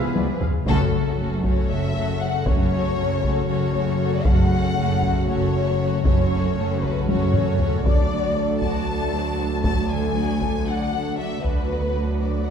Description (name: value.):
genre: cinematic, epic orchestral film score.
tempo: 234 BPM (eighths).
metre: 7/8.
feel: straight.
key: F# minor.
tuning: A4 = 440 Hz.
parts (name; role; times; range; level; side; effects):
rich symphonic violin section; melody; 0.0-12.5 s; A4 to A5; -27 LUFS; left 4 dB; none.
rich symphonic violin section; second line; 0.0-12.5 s; F#4 to D5; -33 LUFS; left 3 dB; none.
rich symphonic viola section; accompaniment; 0.0-12.5 s; D3 to E#5; -32 LUFS; equal; none.
mellow French horn section; sustained chords; 0.0-12.5 s; A3 to F#4; -33 LUFS; left 3 dB; none.
warm trombone section; sustained chords; 0.0-12.5 s; C#3 to G#3; -30 LUFS; right 2 dB; none.
rich symphonic cello section; bass; 0.0-12.5 s; D2 to E#3; -28 LUFS; right 2 dB; none.
rich symphonic double bass section; bass; 0.2-12.5 s; F#1 to D2; -25 LUFS; equal; none.
taiko ensemble; drums; 0.2-12.4 s; none; -24 LUFS; equal; none.
room: wet scoring stage reverb, RT60 2.0 s.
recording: heard from further back in the room.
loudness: -19 LUFS.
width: side -7 dB against mid.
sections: 0.7-12.5 A section.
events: drum fill 0.0-0.7, 7.1-7.8; band accent 0.7-1.2.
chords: 0.0 C#7; 0.7 F#m; 7.8 D; 11.4 Bm/D.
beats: 0.16 0.42 | 0.67 0.93 1.19 1.44 1.70 1.95 2.21 | 2.46 2.72 2.98 3.23 3.49 3.75 4.00 | 4.26 4.51 4.77 5.03 5.28 5.54 5.79 | 6.05 6.31 6.56 6.82 7.08 7.33 7.59 | 7.84 8.10 8.36 8.61 8.87 9.13 9.38 | 9.64 9.89 10.15 10.41 10.66 10.92 11.18 | 11.43 11.69 11.95 12.20 12.46.